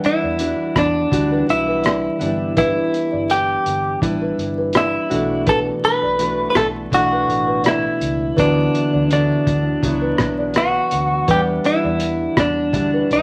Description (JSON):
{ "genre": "indie pop, bedroom pop", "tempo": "83 BPM", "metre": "4/4", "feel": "swing 55% on 16ths", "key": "E minor", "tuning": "A4 = 439 Hz", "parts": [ { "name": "fingerpicked plugged-in steel-string acoustic guitar", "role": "accompaniment", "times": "0.0-13.2 s", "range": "B2 to B4", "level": "-27 LUFS", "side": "equal", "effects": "warbly pitch drift" }, { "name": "overdriven tine electric piano", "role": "accompaniment", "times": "0.0-13.2 s", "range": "E3 to F#5", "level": "-31 LUFS", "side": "equal", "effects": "none" }, { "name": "cloth-damped thuddy drum kit", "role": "drums", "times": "0.0-13.2 s", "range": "hi-hat, kick drum, rim click", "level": "-24 LUFS", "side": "equal", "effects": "none" }, { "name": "direct-recorded clean electric guitar", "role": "melody", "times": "0.1-13.2 s", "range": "D4 to B4", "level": "-21 LUFS", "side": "equal", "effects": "none" }, { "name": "kalimba", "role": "second line", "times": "0.2-13.1 s", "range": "B4 to D5", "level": "-28 LUFS", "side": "equal", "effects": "none" }, { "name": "vintage muted fingered electric bass", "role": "bass", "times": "0.2-13.2 s", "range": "G1 to E2", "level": "-29 LUFS", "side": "equal", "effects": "none" } ], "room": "wet large studio reverb, RT60 0.8 s", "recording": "vinyl crackle", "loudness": "-18 LUFS", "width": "mono", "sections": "0.0-13.2 A section", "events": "none", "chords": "0.0 Em9; 2.2 G6; 5.1 Bm11; 8.4 D69; 11.3 Em9", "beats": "0.39 1.12 1.85 | 2.57 3.30 4.02 4.75 | 5.47 6.20 6.93 7.65 | 8.38 9.10 9.83 10.56 | 11.28 12.01 12.73" }